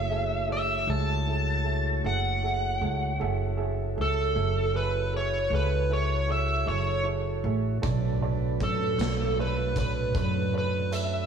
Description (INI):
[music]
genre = slow blues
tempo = 52 BPM (dotted quarters)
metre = 12/8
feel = straight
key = F# minor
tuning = A4 = 441 Hz
[part]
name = smooth overdriven lead guitar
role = melody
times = 0.0-11.3 s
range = A4 to A5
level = -29 LUFS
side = right 1 dB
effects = slapback echo
[part]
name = mellow tonewheel organ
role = sustained chords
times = 0.0-11.3 s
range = A3 to C#5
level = -37 LUFS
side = equal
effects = slow rotary speaker
[part]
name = upright bass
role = bass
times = 0.0-11.3 s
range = F#1 to F#2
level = -28 LUFS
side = right 1 dB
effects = none
[part]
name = warm upright piano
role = accompaniment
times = 0.1-11.2 s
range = G#4 to E5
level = -36 LUFS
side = right 5 dB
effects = slapback echo
[part]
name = raw garage drum kit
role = drums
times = 7.8-11.1 s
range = hi-hat, kick drum, snare drum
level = -32 LUFS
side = equal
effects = none
[sound]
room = moderate concert hall reverb, RT60 2.3 s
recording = big arena sound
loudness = -25 LUFS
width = side -7 dB against mid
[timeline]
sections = 0.0-11.3 A section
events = none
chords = 0.0 F#m7; 7.8 Bm7